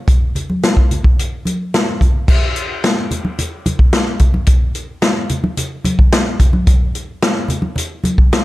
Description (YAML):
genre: rock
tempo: 109 BPM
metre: 4/4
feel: straight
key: none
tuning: none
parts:
  - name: vintage drum kit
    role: drums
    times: 0.1-8.4 s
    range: crash cymbal, hi-hat, kick drum, snare drum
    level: -13 LUFS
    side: equal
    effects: none
  - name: congas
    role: percussion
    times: 0.4-8.2 s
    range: none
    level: -20 LUFS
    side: equal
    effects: none
room: light reverb, studio ambience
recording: none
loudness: -13 LUFS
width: side -17 dB against mid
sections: 0.0-2.3 A section; 2.3-8.4 B section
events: none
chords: none